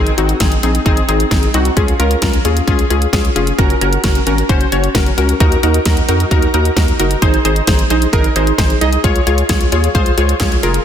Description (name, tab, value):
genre	synth-pop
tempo	132 BPM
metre	4/4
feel	straight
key	unclear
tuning	A4 = 444 Hz
part	funky polysynth comp	accompaniment	0.0-10.8 s	C4 to Eb5	-15 LUFS	left 1 dB	chorus
part	rubbery square bass	bass	0.0-10.8 s	F1 to F2	-17 LUFS	equal	none
part	pop drum kit	drums	0.1-10.8 s	handclaps, hi-hat, kick drum, snare drum	-15 LUFS	equal	none
room	light reverb, digital ambience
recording	dense, heavily limited modern master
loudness	-11 LUFS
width	side -9 dB against mid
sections	0.0-10.8 A section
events	none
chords	0.0 Ab; 1.8 Db; 3.6 Gb; 5.4 Ebm; 7.2 Abadd9; 9.0 Db